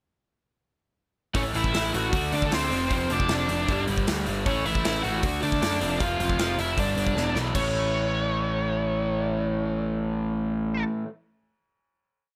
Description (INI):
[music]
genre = punk rock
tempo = 155 BPM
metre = 4/4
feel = straight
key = unclear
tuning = A4 = 440 Hz
[part]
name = overdriven electric guitar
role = riff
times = 1.3-11.1 s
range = E2 to D4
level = -34 LUFS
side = equal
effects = none
[part]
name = raw garage guitar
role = riff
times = 1.3-11.1 s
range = E2 to D4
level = -33 LUFS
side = equal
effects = overdrive
[part]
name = fuzz picked electric bass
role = bass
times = 1.3-10.8 s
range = E1 to D3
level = -33 LUFS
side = equal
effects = overdrive
[part]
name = big rock drum kit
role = drums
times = 1.3-7.6 s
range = crash cymbal, hi-hat, kick drum, snare drum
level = -32 LUFS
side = equal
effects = none
[part]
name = smooth overdriven lead guitar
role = melody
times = 1.4-10.8 s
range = C4 to F#5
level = -30 LUFS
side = equal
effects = none
[sound]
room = little or no reverb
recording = none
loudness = -26 LUFS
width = mono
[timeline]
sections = 1.3-7.6 verse; 7.6-10.7 final chord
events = drum fill 7.2-7.6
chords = 1.3 A5; 2.1 D; 2.7 F5; 3.7 G5; 4.5 A; 5.2 D; 5.8 F5; 6.8 G5; 7.2 E5; 7.6 A